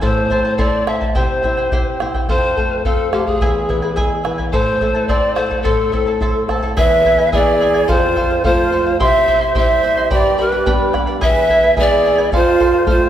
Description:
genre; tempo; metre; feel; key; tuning
andean folk, Andean ensemble; 107 BPM; 2/4; straight; unclear; A4 = 436 Hz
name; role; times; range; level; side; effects
breathy polished pan flute; melody; 0.0-13.1 s; G4 to E5; -16 LUFS; left 1 dB; none
charango; accompaniment; 0.0-13.1 s; E4 to C6; -21 LUFS; right 2 dB; none
flamenco guitar; accompaniment; 0.0-13.1 s; E2 to G4; -23 LUFS; left 1 dB; none
bombo; percussion; 0.0-13.0 s; none; -20 LUFS; equal; none
breathy large quena; second line; 6.8-13.1 s; F4 to C5; -18 LUFS; right 4 dB; none
room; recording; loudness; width
wet scoring stage reverb, RT60 2.0 s; recorded in a church or concert hall; -13 LUFS; side -10 dB against mid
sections
0.0-6.8 A section; 6.8-13.1 B section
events
none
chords
0.0 Am; 1.2 C; 2.3 F; 3.4 E; 4.5 Am; 6.8 E; 7.9 F; 9.0 C; 10.1 G; 11.2 E; 12.3 F

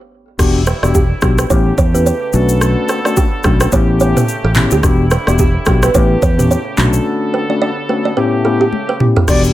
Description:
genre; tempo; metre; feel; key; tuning
afrobeats; 108 BPM; 4/4; swing 58% on 16ths; E dorian; A4 = 440 Hz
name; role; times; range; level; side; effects
mellow tine electric piano; accompaniment; 0.4-9.5 s; A2 to G4; -17 LUFS; left 4 dB; none
warm brass ensemble; sustained chords; 0.4-9.5 s; C#3 to A4; -23 LUFS; right 1 dB; none
fingered electric bass; bass; 0.4-9.5 s; E1 to E2; -14 LUFS; equal; none
afro-pop drum kit; drums; 0.4-9.5 s; crash cymbal, handclaps, kick drum, rim click, shaker, toms; -15 LUFS; equal; none
kalimba; riff; 0.7-9.2 s; F#4 to D5; -18 LUFS; right 5 dB; tape echo
breathy bright concert flute; melody; 9.3-9.4 s; D5; -17 LUFS; left 1 dB; none
room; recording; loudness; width
digital ambience; none; -11 LUFS; side -14 dB against mid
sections
0.4-9.3 A section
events
break 0.0-0.4, 7.1-9.3; drum fill 8.7-9.3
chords
0.4 Em7; 1.5 A7; 2.3 Bm7; 3.7 A7; 4.8 Em7; 5.9 A7; 6.8 Bm7; 8.2 A7

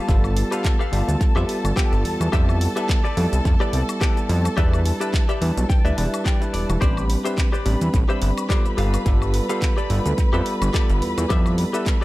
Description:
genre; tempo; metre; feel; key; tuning
nu-disco, nu disco; 107 BPM; 4/4; swing 56% on 16ths; unclear; A4 = 440 Hz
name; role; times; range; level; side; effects
bell-like tine electric piano; accompaniment; 0.0-12.0 s; G3 to B5; -26 LUFS; right 1 dB; sidechain pumping, analog delay
rich symphonic string section; sustained chords; 0.0-12.0 s; A4 to B5; -31 LUFS; left 1 dB; sidechain pumping
direct-recorded clean electric guitar; riff; 0.0-12.0 s; G4 to A5; -29 LUFS; left 3 dB; lush chorus, analog delay
fat analog bass; bass; 0.1-11.7 s; E1 to F2; -21 LUFS; equal; none
electronic kick drum; drums; 0.1-12.0 s; none; -20 LUFS; equal; studio reverb
pop drum kit; drums; 0.1-12.0 s; cabasa, handclaps, hi-hat, woodblock; -32 LUFS; left 1 dB; studio reverb, analog delay
room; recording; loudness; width
digital ambience; echo-heavy mix; -18 LUFS; side -18 dB against mid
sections
0.0-12.0 A section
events
clean electric guitar fill 5.1-6.8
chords
0.0 G9; 2.3 Fmaj9#11; 4.6 Em7; 6.8 Am11; 8.8 G9; 11.3 Fmaj9#11

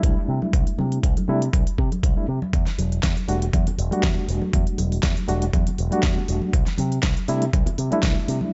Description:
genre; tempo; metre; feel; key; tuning
nu-disco, nu disco; 120 BPM; 4/4; swing 54% on 16ths; E minor; A4 = 441 Hz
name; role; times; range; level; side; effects
reed electric piano; accompaniment; 0.0-8.5 s; G3 to F#4; -29 LUFS; equal; overdrive, fast tremolo, sidechain pumping, analog delay
picked electric bass with an envelope filter; bass; 0.0-8.4 s; E1 to C3; -27 LUFS; equal; none
electronic kick drum; drums; 0.0-8.1 s; none; -24 LUFS; equal; overdrive
pop drum kit; drums; 0.0-8.4 s; hi-hat, snare drum; -32 LUFS; equal; none
congas; percussion; 0.4-8.5 s; none; -33 LUFS; equal; none
room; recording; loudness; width
digital ambience; nothing above 7.8 kHz; -22 LUFS; mono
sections
0.0-8.5 A section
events
none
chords
0.0 C69; 2.5 Em11; 6.5 C69

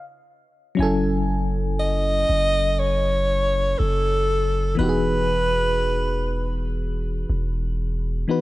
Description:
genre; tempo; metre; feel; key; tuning
contemporary R&B; 60 BPM; 4/4; swing 58% on 16ths; F# dorian; A4 = 441 Hz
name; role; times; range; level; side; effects
FM electric piano with auto-pan; accompaniment; 0.0-8.4 s; E3 to G#5; -26 LUFS; left 2 dB; none
long sustained 808-style bass; bass; 0.8-8.3 s; E1 to F#1; -24 LUFS; equal; none
warm alto saxophone; melody; 1.8-6.8 s; A4 to D#5; -22 LUFS; equal; tape echo
room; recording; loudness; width
little or no reverb; nothing above 10.8 kHz; -20 LUFS; side -17 dB against mid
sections
0.8-8.4 A section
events
stop 0.0-0.8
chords
0.0 N.C.; 0.8 F#m7; 4.8 Emaj7

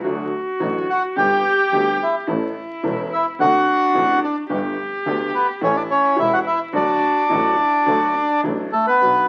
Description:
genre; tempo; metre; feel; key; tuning
tango; 107 BPM; 4/4; rubato; D major; A4 = 444 Hz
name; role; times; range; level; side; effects
warm cello; second line; 0.0-8.7 s; D4 to G4; -29 LUFS; equal; none
clear upright piano; accompaniment; 0.0-9.2 s; E1 to A4; -28 LUFS; equal; none
clear double bass; bass; 0.0-9.2 s; E1 to D2; -31 LUFS; equal; none
bandoneon; melody; 0.9-9.3 s; A3 to G5; -19 LUFS; equal; none
room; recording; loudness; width
moderate studio reverb, RT60 0.7 s; very old 78 rpm record, vinyl crackle; -19 LUFS; mono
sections
0.0-9.0 A section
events
none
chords
0.0 D; 1.2 G; 2.3 A; 3.4 D7; 4.5 Gadd9; 5.6 A7; 6.7 D

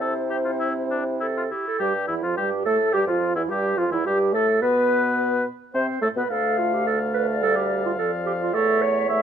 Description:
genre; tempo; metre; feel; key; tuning
quick classical-period movement for wind quintet; 107 BPM; 4/4; rubato; unclear; A4 = 440 Hz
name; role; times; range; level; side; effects
mellow hollow silver concert flute; melody; 0.0-9.2 s; E4 to F5; -29 LUFS; left 7 dB; none
warm oboe; second line; 0.0-9.2 s; D4 to F5; -28 LUFS; left 4 dB; none
clear French horn; accompaniment; 0.0-9.2 s; E3 to C4; -29 LUFS; equal; none
mellow clarinet; accompaniment; 0.0-9.2 s; E4 to E5; -24 LUFS; right 5 dB; none
mellow bassoon; bass; 0.0-9.2 s; D2 to C3; -28 LUFS; right 2 dB; none
room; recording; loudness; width
light reverb; close, detailed microphones; -20 LUFS; side -8 dB against mid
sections
0.0-1.8 A section; 1.8-9.2 B section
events
none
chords
0.0 C; 1.8 Fmaj9/E; 4.1 G; 5.2 Amadd9; 6.3 Dm; 8.5 A/E

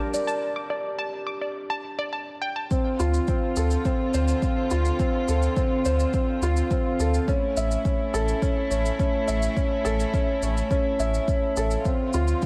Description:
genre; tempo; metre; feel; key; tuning
piano and strings electronica; 105 BPM; 4/4; straight; D minor; A4 = 440 Hz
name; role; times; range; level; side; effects
dark studio string section; sustained chords; 0.0-12.5 s; D3 to Bb4; -35 LUFS; equal; sidechain pumping
warbly dusty pluck; arpeggios; 0.0-2.6 s; D5 to D6; -33 LUFS; equal; chorus, sidechain pumping, tape echo
felt-muted upright piano; riff; 0.0-12.5 s; C4 to E5; -28 LUFS; equal; tape echo
warm sub bass; bass; 0.1-12.3 s; G1 to D2; -27 LUFS; equal; tube saturation, sidechain pumping, high-pass filter
shaker; drums; 0.1-12.5 s; none; -42 LUFS; equal; none
electronic kick drum; drums; 2.7-12.5 s; none; -28 LUFS; equal; none
room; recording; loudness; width
light reverb; none; -25 LUFS; mono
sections
0.0-2.7 A section; 2.7-12.5 B section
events
build-up 0.0-2.7; break 0.4-2.7; drop 2.7-12.5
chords
0.0 Gm7; 2.7 Dm7; 7.3 A; 11.9 Dm7

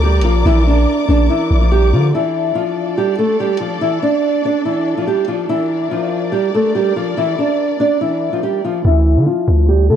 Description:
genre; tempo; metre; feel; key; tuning
hip hop, drill; 143 BPM; 4/4; half-time; D minor; A4 = 439 Hz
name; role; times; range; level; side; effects
nylon-string guitar; melody; 0.0-10.0 s; E3 to D5; -15 LUFS; right 1 dB; low-pass filter, tape echo
dark symphonic string section; sustained chords; 0.0-8.8 s; D4 to D6; -25 LUFS; left 2 dB; none
long sustained 808-style bass; bass; 0.0-2.1, 8.8-10.0 s; Bb1 to D3; -12 LUFS; equal; none
room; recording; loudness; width
light reverb, small room reverb; dry, gritty hardware recording; -13 LUFS; side -9 dB against mid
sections
0.0-2.1 A section; 2.1-8.8 B section; 8.8-10.0 C section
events
none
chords
0.0 Bb; 2.1 Dm; 5.5 Bb; 8.8 Dm

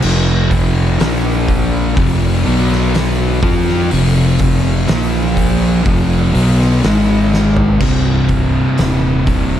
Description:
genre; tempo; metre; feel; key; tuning
stoner and doom metal; 62 BPM; 4/4; straight; unclear; A4 = 440 Hz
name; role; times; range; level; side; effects
fuzz guitar; riff; 0.0-9.6 s; C2 to F4; -14 LUFS; equal; distortion
fuzz fingered electric bass; bass; 0.0-9.6 s; C1 to F2; -17 LUFS; equal; overdrive, tube saturation
oversized low-tuned drum kit; drums; 0.0-9.5 s; crash cymbal, hi-hat, kick drum, snare drum, toms; -18 LUFS; equal; none
room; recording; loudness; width
little or no reverb; dark, warm production; -11 LUFS; side -10 dB against mid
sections
0.0-7.8 A section; 7.8-9.6 B section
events
drum fill 7.3-7.8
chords
0.0 F5; 1.0 Bb5; 2.0 F5; 2.5 B5; 3.4 F5; 4.9 Bb5; 5.9 F5; 6.8 Ab5; 7.8 Cm

